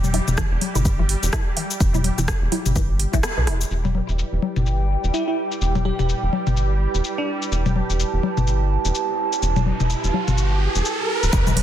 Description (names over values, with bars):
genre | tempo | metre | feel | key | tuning
minimal techno | 126 BPM | 4/4 | swing 59% on 16ths | E minor | A4 = 438 Hz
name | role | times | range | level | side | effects
rubbery square bass | bass | 0.0-11.6 s | D1 to B1 | -22 LUFS | equal | sidechain pumping
house drum kit | drums | 0.0-11.6 s | hi-hat, rim click, shaker | -28 LUFS | left 1 dB | low-pass filter on perc, studio ambience, low-pass filter on hats, soft clipping on snare, low-pass filter on snare
electronic toms and congas | percussion | 0.0-11.6 s | none | -25 LUFS | left 5 dB | studio ambience
swarming drone | texture | 0.0-11.3 s | G3 to G4 | -32 LUFS | right 2 dB | built-in reverb, sidechain pumping
resonant blip pluck | riff | 0.1-3.6, 11.5 s | B2 to E4 | -30 LUFS | right 1 dB | phaser, analog chorus, sidechain pumping, ping-pong delay
electronic kick drum | drums | 0.4-3.2, 11.3-11.4 s | none | -22 LUFS | equal | studio ambience
warbly tape-like pad | texture | 3.7-11.6 s | E4 to A5 | -27 LUFS | right 4 dB | chorus, built-in reverb, sidechain pumping
bell-like FM electric piano | melody | 5.1-7.7 s | D4 to G4 | -28 LUFS | right 1 dB | chorus, phaser, dub echo
riser and impact | sound effects | 9.0-11.6 s | none | -26 LUFS | right 1 dB | none
room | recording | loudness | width
light reverb | dense, heavily limited modern master | -19 LUFS | side -11 dB against mid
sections
0.0-3.7 A section; 3.7-11.3 B section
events
filter sweep on synth arpeggio sound 0.0-3.7; kick drops out 3.2-3.7; band accent 3.2; riser 9.0-11.3; impact 11.3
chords
0.0 Em